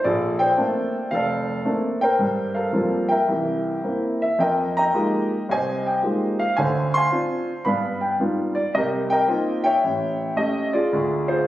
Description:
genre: solo jazz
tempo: 110 BPM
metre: 4/4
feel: swing 66% on 8ths, rubato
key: C minor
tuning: A4 = 440 Hz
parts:
  - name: warm grand piano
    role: solo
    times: 0.0-11.5 s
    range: F1 to C6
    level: -20 LUFS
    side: equal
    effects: none
room: light reverb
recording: recorded on a phone in the room, studio reverb, compression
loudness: -20 LUFS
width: side -14 dB against mid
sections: 0.0-11.5 A section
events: none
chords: 0.0 Bbmaj9; 2.2 Gm11; 3.3 C7; 4.4 Fm11; 6.6 Dm7b5; 7.7 G7b13; 8.7 Cm7; 9.8 A7; 10.9 Dm7b5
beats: | 0.03 0.57 1.11 1.65 | 2.19 2.73 3.28 3.84 | 4.39 4.95 5.50 6.04 | 6.58 7.12 7.66 8.20 | 8.74 9.28 9.83 10.38 | 10.92 11.47

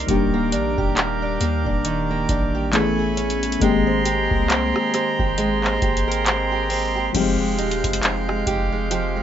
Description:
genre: contemporary R&B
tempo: 68 BPM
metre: 4/4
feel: swing 58% on 16ths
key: unclear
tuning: A4 = 440 Hz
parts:
  - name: mellow FM electric piano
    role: accompaniment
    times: 0.0-9.2 s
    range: Eb3 to G#4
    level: -24 LUFS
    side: left 3 dB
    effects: chorus
  - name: accordion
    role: sustained chords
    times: 0.0-9.2 s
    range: Ab3 to D6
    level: -25 LUFS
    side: right 3 dB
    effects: none
  - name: fingerpicked steel-string acoustic guitar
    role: arpeggios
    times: 0.0-9.2 s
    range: Eb3 to D5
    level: -25 LUFS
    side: right 2 dB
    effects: digital delay
  - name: long sustained 808-style bass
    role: bass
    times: 0.0-9.2 s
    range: Eb1 to Eb2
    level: -27 LUFS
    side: equal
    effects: none
  - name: booming analog drum machine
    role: drums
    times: 0.1-9.1 s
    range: crash cymbal, handclaps, hi-hat, kick drum, rim click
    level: -23 LUFS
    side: equal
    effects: none
room: moderate small room reverb, RT60 0.5 s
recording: nothing above 7.7 kHz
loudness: -18 LUFS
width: side -10 dB against mid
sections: 0.0-7.1 A section; 7.1-9.2 B section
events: none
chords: 0.1 Ebmaj7; 2.7 Amaj9; 3.6 Abmaj9; 7.1 Fm9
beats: | 0.09 0.97 1.85 2.73 | 3.62 4.50 5.38 6.26 | 7.14 8.03 8.91

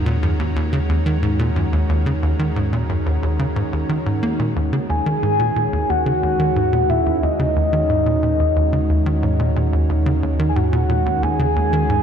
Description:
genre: ambient, sequencer-driven space music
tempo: 90 BPM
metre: 4/4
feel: straight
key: Eb minor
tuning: A4 = 440 Hz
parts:
  - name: lush unison pad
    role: sustained chords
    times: 0.0-12.0 s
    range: Eb3 to Bb4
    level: -24 LUFS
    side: right 1 dB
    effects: chorus
  - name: tight sequencer bass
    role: riff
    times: 0.0-12.0 s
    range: Eb2 to Bb3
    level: -20 LUFS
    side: equal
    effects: tape echo
  - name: warm sub bass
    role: bass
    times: 0.0-12.0 s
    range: Eb2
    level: -22 LUFS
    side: equal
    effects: none
  - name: soft octave-layered synth lead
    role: melody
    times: 4.9-12.0 s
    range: Eb5 to Ab5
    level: -20 LUFS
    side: equal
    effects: chorus, phaser, tape echo
room: moderate lush hall reverb, RT60 2.9 s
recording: dark, warm production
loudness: -16 LUFS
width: side -8 dB against mid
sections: 0.0-12.0 A section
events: fade-in on analog synth pad 0.0-12.0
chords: 0.0 Ebm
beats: 0.56 1.23 | 1.89 2.56 3.23 3.89 | 4.56 5.23 5.89 6.56 | 7.23 7.89 8.56 9.23 | 9.89 10.56 11.23 11.89

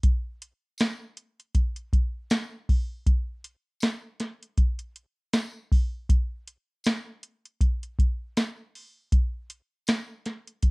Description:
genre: indie pop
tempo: 79 BPM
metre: 4/4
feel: swing 55% on 16ths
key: none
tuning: none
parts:
  - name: soft vintage rhythm box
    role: drums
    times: 0.0-10.7 s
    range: hi-hat, kick drum, snare drum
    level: -23 LUFS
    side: equal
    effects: none
  - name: tambourine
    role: percussion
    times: 0.8-10.1 s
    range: none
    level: -46 LUFS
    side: left 1 dB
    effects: none
room: little or no reverb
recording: worn, warbling old tape, cassette tape, warbly pitch drift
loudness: -25 LUFS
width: side -31 dB against mid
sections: 0.0-10.7 A section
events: none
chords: none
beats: | 0.04 0.80 1.55 2.31 | 3.07 3.82 4.58 5.34 | 6.09 6.85 7.61 8.36 | 9.12 9.88 10.63

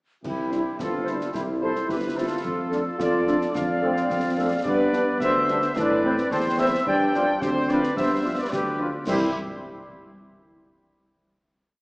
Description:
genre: military-style march for wind band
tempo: 109 BPM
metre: 2/4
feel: straight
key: C major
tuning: A4 = 440 Hz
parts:
  - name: warm trumpet section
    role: melody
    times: 0.2-9.3 s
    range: G4 to G5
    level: -27 LUFS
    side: equal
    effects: none
  - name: hollow small flute group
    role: second line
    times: 0.2-9.4 s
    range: E4 to D5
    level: -28 LUFS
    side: equal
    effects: none
  - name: warm trombone section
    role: sustained chords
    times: 0.2-9.3 s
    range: E3 to F4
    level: -29 LUFS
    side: equal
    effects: none
  - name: warm tuba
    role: bass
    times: 0.2-9.3 s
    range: G1 to A2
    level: -27 LUFS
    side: equal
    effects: none
  - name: clash cymbals, concert bass drum and concert snare drum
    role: drums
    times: 0.2-9.4 s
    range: none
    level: -36 LUFS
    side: equal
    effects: none
  - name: dark woodwind section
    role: second line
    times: 0.5-9.3 s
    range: D4 to E5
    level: -34 LUFS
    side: equal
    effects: none
  - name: mellow French horn section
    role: accompaniment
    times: 0.5-9.3 s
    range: E3 to E4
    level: -32 LUFS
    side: equal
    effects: none
room: wet concert hall reverb, RT60 2.3 s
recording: small speaker sound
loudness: -21 LUFS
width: side -31 dB against mid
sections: 0.2-9.1 A section; 9.1-10.2 final chord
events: none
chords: 0.2 C; 2.4 Dm/F; 4.7 G; 5.8 Am; 6.9 G7sus4; 8.0 G7; 9.1 C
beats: | 0.24 0.79 | 1.34 1.89 | 2.44 2.99 | 3.55 4.10 | 4.65 5.20 | 5.76 6.31 | 6.86 7.41 | 7.96 8.52 | 9.07

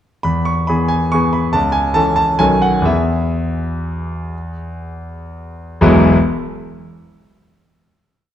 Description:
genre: classical, piano waltz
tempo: 111-153 BPM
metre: 3/4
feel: rubato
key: E major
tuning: A4 = 441 Hz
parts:
  - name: bright concert grand piano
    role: solo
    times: 0.2-6.2 s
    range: E1 to C#6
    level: -14 LUFS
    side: equal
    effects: none
room: wet recital hall reverb, RT60 1.5 s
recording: dark, warm production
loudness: -13 LUFS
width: side -10 dB against mid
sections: 0.3-5.8 A section; 5.8-7.2 final chord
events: slowing down 2.2-5.8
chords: 0.3 E; 1.5 A/C#; 2.4 B9; 2.9 E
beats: | 0.26 0.69 1.13 | 1.54 1.95 2.40 | 2.87 3.34 3.84 | 4.32 4.80 5.31 | 5.82

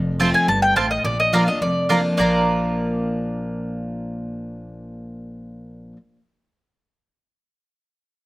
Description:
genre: bluegrass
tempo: 211 BPM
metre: 4/4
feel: straight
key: Bb major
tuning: A4 = 439 Hz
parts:
  - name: picked steel-string acoustic guitar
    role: accompaniment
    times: 0.0-6.0 s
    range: F2 to F4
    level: -24 LUFS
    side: left 1 dB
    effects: slapback echo
  - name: upright bass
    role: bass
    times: 0.0-5.9 s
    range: F1 to Bb1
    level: -30 LUFS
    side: equal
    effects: none
  - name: mandolin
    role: stabs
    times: 0.2-6.0 s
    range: Bb3 to Bb5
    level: -23 LUFS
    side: right 3 dB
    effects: none
  - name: mandolin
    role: melody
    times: 0.3-5.9 s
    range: D5 to A5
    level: -20 LUFS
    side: equal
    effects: none
room: little or no reverb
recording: recorded outdoors, with no room sound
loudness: -18 LUFS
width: side -19 dB against mid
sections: 0.0-2.2 A section; 2.2-4.5 B section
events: none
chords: 0.0 F; 1.0 Bb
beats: 0.19 0.48 0.76 | 1.05 1.33 1.62 1.90 | 2.19 2.47 2.76 3.04 | 3.33 3.61 3.90 4.18

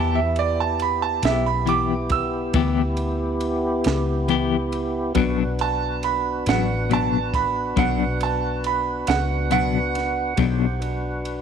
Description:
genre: slow blues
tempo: 46 BPM (dotted quarters)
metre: 12/8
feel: straight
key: B minor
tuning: A4 = 440 Hz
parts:
  - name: bright upright piano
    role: second line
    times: 0.0-11.4 s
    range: D5 to E6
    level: -24 LUFS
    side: right 10 dB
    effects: none
  - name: clean electric guitar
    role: accompaniment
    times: 0.0-10.7 s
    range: B2 to G4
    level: -24 LUFS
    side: left 10 dB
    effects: tremolo
  - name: tonewheel organ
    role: sustained chords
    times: 0.0-11.4 s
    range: B3 to C5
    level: -27 LUFS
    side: equal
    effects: slow rotary speaker, overdrive, chorus vibrato
  - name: vintage muted fingered electric bass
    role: bass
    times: 0.0-11.4 s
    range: A1 to E2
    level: -26 LUFS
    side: left 1 dB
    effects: tube saturation
  - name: compact cocktail drum kit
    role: drums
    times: 0.4-11.4 s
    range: kick drum, ride cymbal, snare drum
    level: -26 LUFS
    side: right 3 dB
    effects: none
room: light reverb, small room ambience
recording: 1960s-style stereo with parts hard left and right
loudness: -20 LUFS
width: side -7 dB against mid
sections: 0.0-11.4 A section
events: upright piano solo 0.0-11.4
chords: 0.0 Em; 5.2 Bm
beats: 1.24 2.55 3.85 | 5.16 6.47 7.78 9.08 | 10.39

